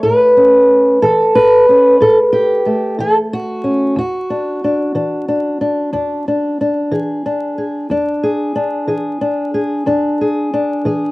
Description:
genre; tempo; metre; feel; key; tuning
acoustic country blues, solo or duo; 61 BPM (dotted quarters); 12/8; straight; E mixolydian; A4 = 440 Hz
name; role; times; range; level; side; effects
fingerpicked old ladder-braced acoustic guitar; solo; 0.0-11.1 s; E2 to B4; -12 LUFS; equal; none
room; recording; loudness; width
moderate small room reverb, RT60 0.5 s; home recording on cassette, vinyl crackle; -12 LUFS; side -21 dB against mid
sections
0.0-11.1 A section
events
none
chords
0.0 A7; 4.0 E7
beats
| 0.04 1.02 2.00 2.98 | 3.96 4.95 5.93 6.91 | 7.89 8.87 9.86 10.84

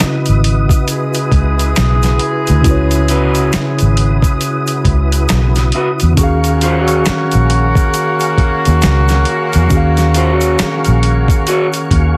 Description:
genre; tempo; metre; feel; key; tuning
R&B, neo-soul; 68 BPM; 4/4; swing 60% on 16ths; Eb phrygian; A4 = 440 Hz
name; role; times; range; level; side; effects
mellow tine electric piano; accompaniment; 0.0-12.2 s; Db3 to F5; -20 LUFS; equal; none
tonewheel organ; sustained chords; 0.0-12.2 s; Fb4 to Eb6; -24 LUFS; equal; chorus vibrato, slow rotary speaker, plate reverb
vintage muted fingered electric bass; bass; 0.0-12.2 s; Ab1 to Fb2; -15 LUFS; equal; none
boom bap sampler-style drum kit; drums; 0.0-12.2 s; hi-hat, kick drum, snare drum; -18 LUFS; equal; none
finger snaps and egg shaker; percussion; 0.0-11.9 s; none; -29 LUFS; equal; none
warm horn section; stabs; 0.9-12.2 s; Ab3 to Ab4; -22 LUFS; equal; none
electric guitar through a small old amp; second line; 3.1-11.7 s; Fb4 to Db5; -20 LUFS; equal; none
room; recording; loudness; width
light reverb; dense, heavily limited modern master; -13 LUFS; mono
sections
0.0-12.2 A section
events
none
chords
0.0 Dbm11; 6.2 Ebm11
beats
0.00 0.88 1.76 | 2.64 3.53 4.41 5.29 | 6.17 7.05 7.94 8.82 | 9.70 10.59 11.47

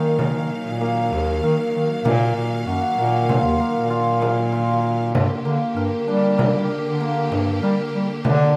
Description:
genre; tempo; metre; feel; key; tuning
contemporary instrumental, chamber music in an uneven meter; 97 BPM; 5/4; straight; unclear; A4 = 441 Hz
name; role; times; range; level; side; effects
clear studio string section; sustained chords; 0.0-8.6 s; D3 to F5; -32 LUFS; equal; none
cimbalom; arpeggios; 0.0-8.6 s; Bb3 to Bb4; -24 LUFS; equal; none
warm bass clarinet; bass; 0.0-8.5 s; Eb2 to G3; -24 LUFS; equal; none
frame drum; percussion; 0.2-8.5 s; none; -27 LUFS; equal; none
room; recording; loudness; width
little or no reverb; close, detailed microphones; -21 LUFS; mono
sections
0.0-8.6 A section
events
none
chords
0.0 Ebmadd9; 5.1 Gm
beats
0.19 0.81 1.43 | 2.05 2.67 3.29 3.91 4.53 | 5.15 5.77 6.39 7.01 7.63 | 8.25

